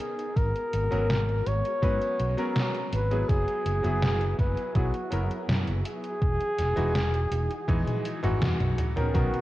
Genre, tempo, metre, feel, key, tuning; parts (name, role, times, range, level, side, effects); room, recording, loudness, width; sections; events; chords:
vaporwave; 82 BPM; 4/4; straight; A4 = 440 Hz
mellow flugelhorn; melody; 0.0-9.4 s; F#4 to C#5; -30 LUFS; equal; tape echo
bright electric grand piano; accompaniment; 0.0-9.4 s; D#3 to B4; -32 LUFS; equal; lush chorus, analog delay
soft string machine; sustained chords; 0.0-9.4 s; E3 to G#4; -40 LUFS; equal; ensemble chorus
detuned 8-bit digital drum machine; drums; 0.0-9.4 s; congas, hi-hat, snare drum, toms; -30 LUFS; equal; overdrive, vintage 12-bit sampler grit, gated reverb
fretless electric bass; bass; 0.4-9.3 s; E1 to G#2; -28 LUFS; equal; tube saturation
electronic kick drum; drums; 0.4-9.3 s; -26 LUFS; equal; overdrive, vintage 12-bit sampler grit
light reverb, digital ambience; cassette tape; -24 LUFS; side -16 dB against mid
0.0-9.1 A section
drum fill 7.7-9.1
0.4 G#m11; 3.3 F#9sus4; 6.2 Emaj9